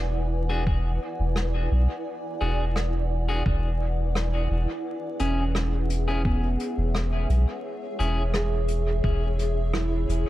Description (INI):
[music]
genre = ambient dub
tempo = 86 BPM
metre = 4/4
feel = straight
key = E mixolydian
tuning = A4 = 440 Hz
[part]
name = granular cloud pad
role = sustained chords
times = 0.0-10.3 s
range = E4 to G#5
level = -32 LUFS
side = left 1 dB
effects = built-in reverb
[part]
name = soft dub sub bass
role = bass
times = 0.0-10.2 s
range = E1 to B1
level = -24 LUFS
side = equal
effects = none
[part]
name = electric guitar at the edge of break-up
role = stabs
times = 0.5-8.2 s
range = C#4 to G#4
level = -34 LUFS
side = left 2 dB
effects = dub echo
[part]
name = electronic kick drum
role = drums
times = 0.7-9.2 s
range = none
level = -26 LUFS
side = equal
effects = none
[part]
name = vintage brush drum kit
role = drums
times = 1.4-10.2 s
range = hi-hat, rim click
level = -34 LUFS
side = left 1 dB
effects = dub echo
[part]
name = handpan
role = arpeggios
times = 5.2-10.3 s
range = B3 to G#4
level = -32 LUFS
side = right 3 dB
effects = dub echo
[sound]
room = studio reverb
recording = vinyl crackle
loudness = -23 LUFS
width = side -15 dB against mid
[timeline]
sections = 0.0-10.3 A section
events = none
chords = 0.0 E9; 4.9 C#m/E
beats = 0.67 1.36 | 2.06 2.76 3.46 4.16 | 4.85 5.55 6.25 6.95 | 7.64 8.34 9.04 9.74